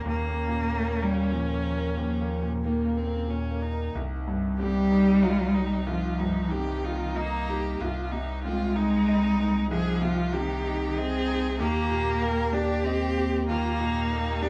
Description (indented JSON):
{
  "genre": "neoclassical piano and strings",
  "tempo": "94 BPM",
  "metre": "3/4",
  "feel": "rubato",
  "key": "Eb major",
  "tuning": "A4 = 440 Hz",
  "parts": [
    { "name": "rich cello", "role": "second line", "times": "0.0-14.5 s", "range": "Eb3 to D4", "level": "-29 LUFS", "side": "equal", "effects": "none" },
    { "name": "bright grand piano", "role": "accompaniment", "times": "0.0-14.5 s", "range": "C2 to Eb5", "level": "-35 LUFS", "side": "equal", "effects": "none" },
    { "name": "rich viola", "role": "accompaniment", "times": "0.0-14.5 s", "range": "Bb3 to Bb4", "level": "-35 LUFS", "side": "equal", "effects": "none" },
    { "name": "warm analog pad", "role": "sustained chords", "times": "0.0-14.5 s", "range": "Db3 to G5", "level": "-38 LUFS", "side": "equal", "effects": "chorus" },
    { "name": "sub bass with octave", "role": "bass", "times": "0.0-14.5 s", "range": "C2 to Eb2", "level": "-34 LUFS", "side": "equal", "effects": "none" }
  ],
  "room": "moderate studio reverb, RT60 0.5 s",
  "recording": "none",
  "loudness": "-27 LUFS",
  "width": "mono",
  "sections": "0.0-3.9 A section; 3.9-14.5 B section",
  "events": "none",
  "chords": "0.0 Eb7(no3); 3.9 Cm; 7.8 Ab/C; 11.6 Eb"
}